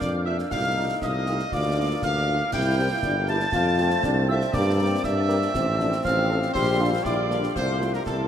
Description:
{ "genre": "military-style march for wind band", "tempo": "119 BPM", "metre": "2/4", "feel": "straight", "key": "F major", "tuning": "A4 = 442 Hz", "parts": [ { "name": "warm trumpet section", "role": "melody", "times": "0.0-8.3 s", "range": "A4 to A5", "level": "-28 LUFS", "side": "equal", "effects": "none" }, { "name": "piccolo", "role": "second line", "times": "0.0-8.3 s", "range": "A5 to A6", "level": "-30 LUFS", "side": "right 3 dB", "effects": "none" }, { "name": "warm euphonium", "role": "second line", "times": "0.0-8.3 s", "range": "Bb3 to G4", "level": "-29 LUFS", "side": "left 4 dB", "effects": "none" }, { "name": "warm trombone section", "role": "sustained chords", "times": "0.0-8.3 s", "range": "D3 to E4", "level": "-32 LUFS", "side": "right 1 dB", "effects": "none" }, { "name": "mellow tuba", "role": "bass", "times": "0.0-8.3 s", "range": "G1 to G2", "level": "-26 LUFS", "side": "equal", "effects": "none" }, { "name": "concert snare drum, concert bass drum and clash cymbals", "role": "drums", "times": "0.0-8.3 s", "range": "none", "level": "-35 LUFS", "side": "right 1 dB", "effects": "none" }, { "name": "dark French horn section", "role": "accompaniment", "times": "0.3-7.9 s", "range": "F3 to Bb4", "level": "-35 LUFS", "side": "right 2 dB", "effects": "none" } ], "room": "wet huge ambient reverb, RT60 8.5 s", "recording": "in a vast, echoing space", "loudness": "-21 LUFS", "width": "side -9 dB against mid", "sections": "0.0-8.3 A section", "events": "none", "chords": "0.0 Bb; 0.5 F7/C; 1.5 Bb/D; 2.5 C7; 3.5 F; 4.5 C7/G; 5.5 F/A; 6.6 Gm/Bb; 7.6 F/C" }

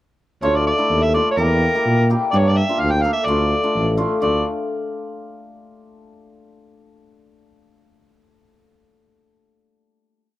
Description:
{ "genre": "klezmer", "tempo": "127 BPM", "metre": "2/4", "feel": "straight", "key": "D harmonic minor", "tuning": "A4 = 440 Hz", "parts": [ { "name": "overdriven harmonica", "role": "melody", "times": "0.4-4.4 s", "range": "Bb4 to G5", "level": "-20 LUFS", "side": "right 1 dB", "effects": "plate reverb" }, { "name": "hammered dulcimer", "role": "accompaniment", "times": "0.4-4.4 s", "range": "A3 to A4", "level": "-22 LUFS", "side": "left 3 dB", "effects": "none" }, { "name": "mellow tuba", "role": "bass", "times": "0.4-4.4 s", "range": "A1 to Bb2", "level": "-19 LUFS", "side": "right 1 dB", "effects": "none" } ], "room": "moderate small room reverb, RT60 0.5 s", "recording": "dark, warm production", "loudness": "-16 LUFS", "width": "side -15 dB against mid", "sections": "0.4-4.2 A section; 4.2-5.2 final chord", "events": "none", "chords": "0.4 Dm; 1.4 Edim; 2.3 Gm; 3.3 Dm" }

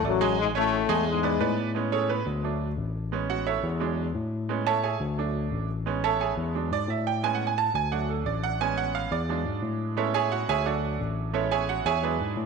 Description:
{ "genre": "latin", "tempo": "175 BPM", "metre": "4/4", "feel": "straight", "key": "A major", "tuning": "A4 = 440 Hz", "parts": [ { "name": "bright trombone section", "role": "melody", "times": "0.0-1.5 s", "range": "F#2 to A3", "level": "-25 LUFS", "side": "left 12 dB", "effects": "none" }, { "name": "bright upright piano", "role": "accompaniment", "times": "0.0-12.5 s", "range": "F#3 to A5", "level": "-27 LUFS", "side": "right 9 dB", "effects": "none" }, { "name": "barky tine electric piano", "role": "bass", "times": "0.0-12.5 s", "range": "A1 to A2", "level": "-30 LUFS", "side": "left 2 dB", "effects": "medium stereo tremolo" } ], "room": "moderate echo chamber reverb, RT60 2.0 s", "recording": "1960s-style stereo with parts hard left and right", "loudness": "-25 LUFS", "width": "side -5 dB against mid", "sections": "0.0-1.8 A section; 1.8-12.5 B section", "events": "upright piano solo 1.8-12.5", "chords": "0.4 Amaj7; 1.1 E7; 1.8 Amaj7; 2.4 D; 3.1 Amaj7; 3.8 E7; 4.5 Amaj7; 5.2 D; 5.9 Amaj7; 6.5 E7; 7.2 Amaj7; 7.9 D; 8.6 Amaj7; 9.3 E7; 10.0 Amaj7; 10.7 D; 11.3 Amaj7" }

